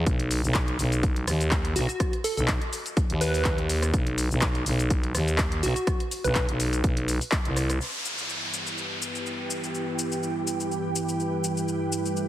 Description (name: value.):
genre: bass house.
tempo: 124 BPM.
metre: 4/4.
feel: swing 54% on 16ths.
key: E harmonic minor.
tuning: A4 = 440 Hz.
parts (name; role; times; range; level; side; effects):
growling FM bass; bass; 0.0-7.8 s; B1 to D#2; -25 LUFS; equal; tube saturation, sidechain pumping.
electronic kick drum; drums; 0.1-7.4 s; none; -26 LUFS; equal; overdrive.
house drum kit; drums; 0.1-12.3 s; handclaps, hi-hat, rim click, shaker; -31 LUFS; left 1 dB; overdrive.
plucky unison lead; melody; 1.8-6.4 s; F#4 to B4; -31 LUFS; right 1 dB; tape echo.
dark analog pad; sustained chords; 8.4-12.3 s; G3 to B4; -30 LUFS; right 2 dB; chorus, sidechain pumping.
downlifter; sound effects; 7.8-11.7 s; none; -33 LUFS; equal; none.
ethereal airy pad; texture; 8.5-12.3 s; E4 to G5; -31 LUFS; right 1 dB; ensemble chorus, built-in reverb, sidechain pumping.
room: moderate lush hall reverb, RT60 2.2 s.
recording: heavily compressed radio sound, multiband compression.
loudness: -24 LUFS.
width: side -13 dB against mid.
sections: 0.0-7.8 A section; 7.8-12.3 B section.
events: filter sweep on analog synth pad 7.8-12.3.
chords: 0.1 B; 7.8 Em.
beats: | 0.07 0.55 1.03 1.52 | 2.00 2.48 2.97 3.45 | 3.94 4.42 4.90 5.39 | 5.87 6.36 6.84 7.32 | 7.81 8.29 8.78 9.26 | 9.74 10.23 10.71 11.19 | 11.68 12.16.